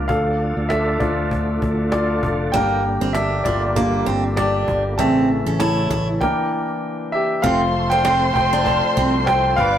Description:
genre	piano-driven pop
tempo	98 BPM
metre	4/4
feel	swing 56% on 16ths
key	D harmonic minor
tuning	A4 = 441 Hz
part	clear concert grand piano	accompaniment	0.0-9.8 s	C#3 to A5	-20 LUFS	left 1 dB	none
part	bright tonewheel organ	sustained chords	0.0-9.8 s	C3 to B4	-27 LUFS	equal	chorus vibrato, slow rotary speaker
part	fingered electric bass	bass	0.0-9.8 s	F1 to D2	-24 LUFS	equal	none
part	cajon	drums	0.1-9.7 s	none	-28 LUFS	equal	none
part	picked steel-string acoustic guitar	riff	2.5-9.1 s	Bb3 to E4	-22 LUFS	right 3 dB	none
part	rich studio violin section	second line	7.4-9.8 s	C5 to D6	-23 LUFS	equal	none
room	moderate stone room reverb, RT60 1.2 s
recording	rough rehearsal-room recording, tube saturation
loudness	-17 LUFS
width	side -10 dB against mid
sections	0.0-7.4 A section; 7.4-9.8 B section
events	grand piano solo 0.0-7.4, 7.4-9.8; stop 6.2-7.4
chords	0.1 Dm; 2.5 Gm; 5.0 A; 6.2 Em7b5; 7.4 F

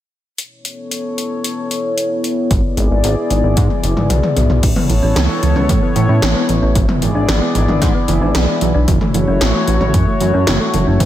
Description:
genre	synthwave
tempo	113 BPM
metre	4/4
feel	straight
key	unclear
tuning	A4 = 441 Hz
part	chorused pulse-width pad	sustained chords	0.4-11.1 s	A3 to D5	-19 LUFS	left 2 dB	sidechain pumping
part	80s electronic pad drums	drums	0.4-11.1 s	crash cymbal, hi-hat, snare drum, toms	-20 LUFS	left 1 dB	gated reverb on snare and toms, gated reverb
part	chorused synth bass	bass	2.5-11.1 s	F#1 to A2	-15 LUFS	equal	none
part	electronic kick drum	drums	2.5-11.1 s	none	-17 LUFS	equal	none
part	thumb-piano-like synth pluck	arpeggios	4.6-11.1 s	E3 to D4	-20 LUFS	right 3 dB	chorus, ping-pong delay
room	light reverb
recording	none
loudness	-13 LUFS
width	side -12 dB against mid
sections	0.4-4.6 A section; 4.6-11.1 B section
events	drum fill 3.6-4.6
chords	0.4 Aadd9; 2.5 E7/G#; 4.6 Aadd9; 6.8 E7/G#; 8.9 F#m7

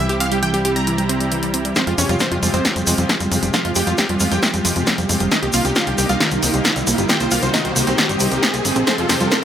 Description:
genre	uplifting trance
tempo	135 BPM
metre	4/4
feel	straight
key	F minor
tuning	A4 = 442 Hz
part	supersaw stab	melody	0.0-9.4 s	C4 to Bb5	-23 LUFS	equal	sidechain pumping, dub echo
part	lush unison pad	sustained chords	0.0-9.4 s	C3 to G4	-25 LUFS	equal	chorus, sidechain pumping
part	wide unison pluck	arpeggios	0.0-9.4 s	Eb3 to G4	-23 LUFS	right 2 dB	sidechain pumping
part	tight sequencer bass	bass	0.0-9.3 s	F1 to F2	-23 LUFS	left 1 dB	sidechain pumping
part	big-room dance drum kit	drums	0.1-9.4 s	hi-hat, snare drum	-20 LUFS	left 1 dB	none
part	electronic kick drum	drums	1.8-9.4 s	none	-28 LUFS	left 1 dB	high-pass filter on kick, high-pass filter on room
part	egg shaker	percussion	1.8-9.4 s	none	-25 LUFS	right 1 dB	none
part	riser	sound effects	3.6-9.4 s	none	-26 LUFS	equal	none
room	light reverb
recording	high-pass filter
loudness	-15 LUFS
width	side -9 dB against mid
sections	0.0-1.8 A section; 1.8-9.4 B section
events	build-up 1.8-9.4; drum fill 1.8-9.4; riser 3.6-9.4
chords	0.0 C; 1.8 Fmadd9; 5.3 Cm7; 8.9 Fmadd9

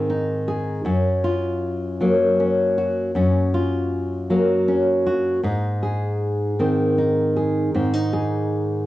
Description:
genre	folk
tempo	52 BPM (dotted quarters)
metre	6/8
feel	straight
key	unclear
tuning	A4 = 440 Hz
part	nylon-string guitar	solo	0.0-8.9 s	Gb2 to Ab4	-19 LUFS	equal	none
room	wet studio reverb, RT60 0.5 s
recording	home recording on cassette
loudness	-19 LUFS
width	side -15 dB against mid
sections	0.0-8.9 A section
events	none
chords	0.0 Ab; 0.9 Gb; 5.4 Ab

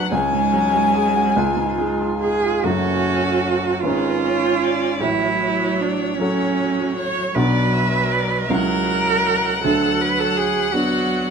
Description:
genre	classical, slow romantic movement for piano quartet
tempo	47-55 BPM (dotted quarters)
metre	6/8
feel	rubato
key	F# minor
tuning	A4 = 440 Hz
part	warm violin	melody	0.0-11.3 s	A4 to G#5	-24 LUFS	left 6 dB	none
part	rich cello	second line	0.0-11.3 s	F#3 to C#5	-21 LUFS	right 5 dB	none
part	warm baby grand piano	accompaniment	0.0-11.3 s	F#1 to B5	-22 LUFS	equal	none
part	warm viola	accompaniment	0.0-11.3 s	F#3 to E#4	-26 LUFS	right 2 dB	none
room	moderate studio reverb, RT60 0.6 s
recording	minimal, uncompressed stereo recording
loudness	-17 LUFS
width	side -6 dB against mid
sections	0.0-2.6 A section; 2.6-11.3 B section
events	none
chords	0.1 C#sus4; 1.4 C#; 2.6 F#m; 3.8 C#7/G#; 5.0 F#m/A; 7.3 Bm; 8.5 F#7/C#; 9.6 Bm/D

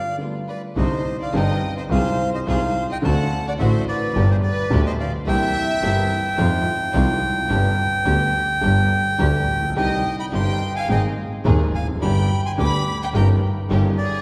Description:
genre	tango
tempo	107 BPM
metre	4/4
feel	rubato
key	C harmonic minor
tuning	A4 = 436 Hz
part	bandoneon	melody	0.0-14.2 s	C5 to D6	-27 LUFS	equal	none
part	warm studio violin section	second line	0.0-6.3, 9.8-14.2 s	Ab4 to B5	-32 LUFS	equal	none
part	warm upright piano	accompaniment	0.2-13.9 s	Eb1 to Ab4	-27 LUFS	equal	none
part	rich studio string section	stabs	0.2-13.9 s	G3 to Ab4	-35 LUFS	equal	none
part	clear double bass	bass	0.8-13.9 s	F1 to F2	-24 LUFS	equal	none
room	wet church reverb, RT60 2.7 s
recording	recorded in a church or concert hall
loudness	-20 LUFS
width	mono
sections	0.8-14.2 A section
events	break 0.0-0.8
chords	0.0 G7; 0.8 Cmadd9; 1.9 Ab6/C; 3.0 D7; 4.1 G; 5.3 C7; 6.4 Fm7; 7.5 G; 9.8 Cm; 10.9 Ab; 12.0 G; 13.1 Eb7/G

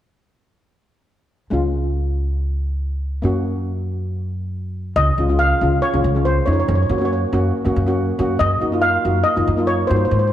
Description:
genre	calypso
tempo	140 BPM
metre	4/4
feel	straight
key	Db major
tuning	A4 = 440 Hz
part	steel pan	accompaniment	1.5-10.1 s	Ab3 to Gb4	-21 LUFS	left 1 dB	none
part	upright bass	bass	1.5-10.3 s	Db2 to Ab2	-20 LUFS	equal	none
part	steel pan	melody	5.0-10.3 s	C5 to F5	-20 LUFS	equal	none
room	moderate concert hall reverb, RT60 1.8 s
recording	none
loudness	-17 LUFS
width	side -11 dB against mid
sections	1.5-5.0 A section; 5.0-10.3 B section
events	none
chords	1.5 Db; 3.2 Gb; 5.0 Db; 6.7 Gb; 8.4 Ebm/Gb

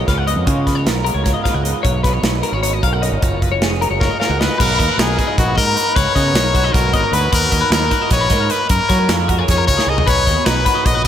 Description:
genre	math rock and midwest emo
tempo	306 BPM (eighths)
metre	7/8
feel	straight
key	B lydian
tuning	A4 = 440 Hz
part	electric guitar through a small old amp	accompaniment	0.0-11.1 s	F#2 to B4	-25 LUFS	right 7 dB	ensemble chorus
part	twelve-string electric guitar	arpeggios	0.0-11.1 s	G#4 to F#5	-21 LUFS	left 4 dB	wide subtle chorus, diffuse ambient delay
part	growling fingered electric bass	bass	0.0-11.1 s	E#1 to F#3	-20 LUFS	equal	overdrive
part	modern studio drum kit	drums	0.1-11.1 s	crash cymbal, hi-hat, kick drum, snare drum, toms	-19 LUFS	right 1 dB	none
part	brilliant trumpet	melody	4.0-11.1 s	F#4 to D#5	-18 LUFS	left 2 dB	diffuse ambient delay
room	moderate cathedral reverb, RT60 5.6 s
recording	dreamy mix soaked in reverb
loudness	-13 LUFS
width	side -10 dB against mid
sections	0.0-4.6 A section; 4.6-11.1 B section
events	drum fill 4.0-4.6, 9.8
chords	0.0 C#13; 1.8 B69; 3.2 F#maj9; 4.6 Bmaj7; 6.0 C#9sus4; 7.3 Bmaj7/D#; 8.7 F#maj9; 10.1 Bmaj7

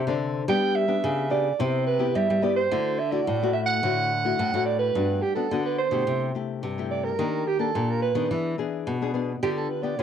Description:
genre	samba and choro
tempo	107 BPM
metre	4/4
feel	straight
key	G major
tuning	A4 = 440 Hz
part	dark soprano saxophone	melody	0.0-10.0 s	G4 to G5	-25 LUFS	right 7 dB	cassette tape
part	nylon-string guitar	accompaniment	0.0-10.0 s	G2 to A4	-28 LUFS	left 8 dB	cassette tape
part	nylon-string guitar	bass	0.0-10.0 s	G2 to G3	-29 LUFS	equal	none
room	moderate studio reverb, RT60 0.6 s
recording	home recording on cassette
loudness	-23 LUFS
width	side -8 dB against mid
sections	0.0-5.0 A section; 5.0-10.0 B section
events	none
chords	0.5 G; 1.6 Cmaj7; 2.7 Dadd9; 5.0 Gmaj7; 6.1 C6; 7.2 Ebmaj7; 8.3 E7; 9.4 G7/D

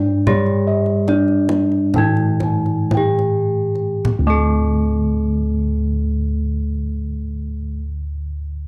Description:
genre	Javanese gamelan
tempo	50-81 BPM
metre	4/4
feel	straight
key	unclear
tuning	A4 = 440 Hz
part	gamelan-type bronze metallophone	melody	0.0-7.8 s	D4 to A4-40c	-23 LUFS	equal	none
part	gamelan-type bronze metallophone	accompaniment	0.0-7.8 s	E3-50c to A3-40c	-25 LUFS	equal	none
part	gamelan-type bossed gongs	bass	0.0-7.7 s	D2 to G4+30c	-23 LUFS	equal	none
part	gamelan-type bossed gongs	arpeggios	0.3-7.8 s	D5 to A5-40c	-29 LUFS	equal	none
part	kendang	percussion	0.3-4.6 s	none	-27 LUFS	equal	none
room	little or no reverb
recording	dry, close 1970s-style studio recording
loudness	-19 LUFS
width	mono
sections	0.0-4.1 A section; 4.1-8.7 B section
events	slowing down 0.0-4.1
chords	none

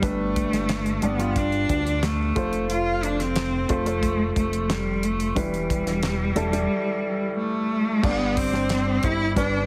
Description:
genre	piano-driven pop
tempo	90 BPM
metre	4/4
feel	straight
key	G mixolydian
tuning	A4 = 440 Hz
part	rich cello	melody	0.0-9.7 s	G3 to F4	-27 LUFS	equal	none
part	warm grand piano	accompaniment	0.0-9.7 s	G2 to D5	-30 LUFS	equal	none
part	chorused synth bass	bass	0.0-9.7 s	E1 to D2	-31 LUFS	equal	none
part	damped 70s drum kit	drums	0.0-9.5 s	crash cymbal, handclaps, hi-hat, kick drum, snare drum	-31 LUFS	equal	none
part	tonewheel organ	sustained chords	8.0-9.7 s	D4 to C6	-40 LUFS	equal	none
room	moderate plate reverb, RT60 2.4 s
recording	heavily compressed radio sound, multiband compression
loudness	-24 LUFS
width	mono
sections	0.0-8.0 A section; 8.0-9.7 B section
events	none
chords	0.0 G; 2.4 F; 5.4 Em; 8.0 Gsus4

